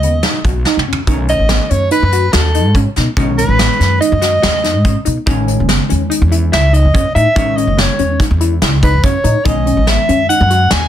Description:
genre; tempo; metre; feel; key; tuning
progressive instrumental, band music in an uneven meter; 143 BPM; 5/4; straight; B mixolydian; A4 = 440 Hz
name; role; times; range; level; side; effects
mellow soprano saxophone; melody; 0.0-10.9 s; A4 to G#5; -15 LUFS; equal; none
vintage hollow-body jazz guitar; accompaniment; 0.0-10.9 s; D#3 to C#4; -23 LUFS; left 1 dB; none
tight sequenced synth; arpeggios; 0.0-10.8 s; B3 to F#4; -20 LUFS; left 1 dB; chorus, ping-pong delay
upright bass; bass; 0.0-10.9 s; F#1 to B2; -14 LUFS; equal; none
soft brush drum kit; drums; 0.0-10.8 s; hi-hat, kick drum, snare drum, toms; -16 LUFS; equal; soft clipping on kick
room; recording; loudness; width
light reverb; dense, heavily limited modern master; -10 LUFS; side -11 dB against mid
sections
0.0-1.1 A section; 1.1-10.9 B section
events
drum fill 0.7-1.1; soprano saxophone solo 1.1-10.9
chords
0.0 B; 1.1 B7; 5.3 A; 9.5 B7

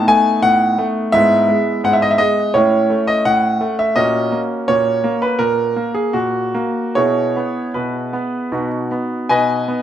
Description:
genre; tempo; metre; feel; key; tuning
classical-period piano sonatina; 72-86 BPM; 4/4; rubato; E major; A4 = 440 Hz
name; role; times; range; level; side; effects
bright concert grand piano; solo; 0.0-9.8 s; G#2 to G#5; -14 LUFS; equal; none
room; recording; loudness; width
moderate large studio reverb, RT60 1.3 s; none; -14 LUFS; side -10 dB against mid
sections
0.0-9.8 A section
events
none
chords
0.0 B7/A; 1.1 E/G#; 2.5 A6; 4.0 F#/A#; 7.0 E/B; 8.5 B

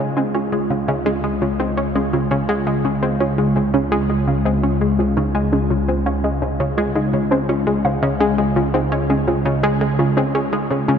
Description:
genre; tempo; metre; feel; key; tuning
ambient, sequencer-driven space music; 84 BPM; 4/4; straight; Db major; A4 = 440 Hz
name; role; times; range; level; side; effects
phased analog pad; sustained chords; 0.0-11.0 s; Db3 to F4; -21 LUFS; equal; phaser, chorus
analog pluck; riff; 0.0-11.0 s; Db3 to Db4; -20 LUFS; left 1 dB; chorus, ping-pong delay
analog drone; bass; 0.7-11.0 s; Db2; -27 LUFS; equal; chorus
warbly dusty pluck; arpeggios; 0.2-11.0 s; Db4 to F5; -23 LUFS; moving between left 3 dB and right 4 dB; chorus, auto-pan, ping-pong delay
room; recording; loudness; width
wet cathedral reverb, RT60 6.3 s; in a vast, echoing space; -16 LUFS; side -7 dB against mid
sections
0.0-11.0 A section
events
filter sweep on synth arpeggio sound 0.0-11.0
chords
0.0 Dbadd9

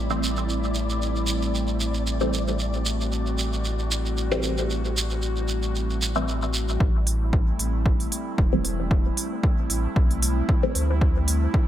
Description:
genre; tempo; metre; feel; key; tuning
dub techno; 114 BPM; 4/4; swing 54% on 16ths; A dorian; A4 = 441 Hz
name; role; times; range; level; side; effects
airy breathy pad; sustained chords; 0.0-11.7 s; G3 to F#4; -30 LUFS; equal; chorus, sidechain pumping
pure sine sub bass; bass; 0.0-11.5 s; E1 to D2; -26 LUFS; equal; sidechain pumping
flickering grainy texture; texture; 0.0-6.8 s; E4 to D5; -36 LUFS; left 3 dB; built-in reverb, lush chorus, sidechain pumping
filtered dub chord stab; stabs; 0.1-10.9 s; E3 to C4; -29 LUFS; equal; phaser, sidechain pumping, dub echo
shekere; percussion; 0.1-6.8 s; none; -30 LUFS; right 3 dB; none
electronic kick drum; drums; 6.8-11.7 s; none; -22 LUFS; equal; none
electronic hi-hat; drums; 7.1-11.4 s; none; -26 LUFS; right 2 dB; none
room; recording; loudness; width
light reverb, digital ambience; bright 1980s-style digital production; -22 LUFS; side -12 dB against mid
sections
0.0-6.8 A section; 6.8-11.7 B section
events
filter sweep on synth stab 0.0-6.8; filter sweep on analog synth pad 0.0-6.8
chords
0.0 Am7

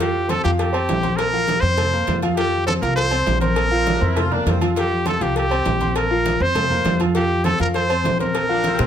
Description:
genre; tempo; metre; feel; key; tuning
latin, salsa; 201 BPM; 4/4; straight; unclear; A4 = 440 Hz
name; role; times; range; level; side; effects
bright trumpet; melody; 0.0-8.9 s; G4 to C5; -21 LUFS; equal; none
clear grand piano; accompaniment; 0.0-8.9 s; F3 to C6; -24 LUFS; equal; none
upright bass; bass; 0.0-8.9 s; Bb1 to Bb2; -24 LUFS; equal; none
agogo bells and timbales; percussion; 0.0-8.8 s; none; -30 LUFS; right 7 dB; none
cowbell and bongos; percussion; 0.0-8.9 s; none; -30 LUFS; left 5 dB; none
congas; percussion; 0.1-8.9 s; none; -26 LUFS; equal; none
clear saxophone section; second line; 3.7-4.7, 8.5-8.9 s; C4 to F4; -28 LUFS; equal; none
room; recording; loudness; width
moderate studio ambience, RT60 0.5 s; none; -17 LUFS; side -9 dB against mid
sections
0.0-8.9 A section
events
none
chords
0.0 Bbsus2

